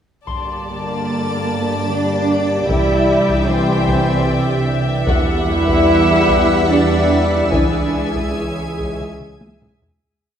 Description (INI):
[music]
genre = cinematic, suspense film score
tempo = 74 BPM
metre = 3/4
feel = straight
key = G dorian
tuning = A4 = 440 Hz
[part]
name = muted symphonic violin section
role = second line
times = 0.3-9.8 s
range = D5 to A5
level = -25 LUFS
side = left 3 dB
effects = none
[part]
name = muted studio viola section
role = accompaniment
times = 0.3-9.8 s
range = G4 to E5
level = -26 LUFS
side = right 4 dB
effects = none
[part]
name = clear trombone section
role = sustained chords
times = 0.3-9.7 s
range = D3 to Bb3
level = -26 LUFS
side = right 1 dB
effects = none
[part]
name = soft additive organ-like pad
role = sustained chords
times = 0.9-10.0 s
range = E4 to A5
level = -27 LUFS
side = equal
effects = ensemble chorus, built-in reverb
[part]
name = muted symphonic double bass section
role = bass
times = 0.3-9.8 s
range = G1 to E2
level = -21 LUFS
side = right 2 dB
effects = none
[part]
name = solo taiko drums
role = drums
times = 0.3-10.2 s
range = none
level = -23 LUFS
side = equal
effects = none
[part]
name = concert harp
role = texture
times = 0.3-7.6 s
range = F#4 to C6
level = -30 LUFS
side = left 2 dB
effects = none
[part]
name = muted symphonic violin section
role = melody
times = 0.7-9.2 s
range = Bb4 to E5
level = -25 LUFS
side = left 4 dB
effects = none
[part]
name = warm French horn section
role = sustained chords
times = 0.7-9.2 s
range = D3 to G3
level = -21 LUFS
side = left 2 dB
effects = none
[part]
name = muted symphonic cello section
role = bass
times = 0.7-9.2 s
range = Bb3 to E4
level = -21 LUFS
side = right 3 dB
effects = none
[sound]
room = wet recital hall reverb, RT60 1.4 s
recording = recorded in a church or concert hall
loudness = -14 LUFS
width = side -8 dB against mid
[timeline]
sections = 0.3-10.0 A section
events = fade-out 7.5-10.0; drum fill 9.4-10.0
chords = 0.3 Gmadd9; 2.7 Cadd9; 5.1 Emadd9; 7.5 C#m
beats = | 0.28 1.09 1.89 | 2.69 3.49 4.27 | 5.07 5.87 6.69 | 7.52 8.36 9.20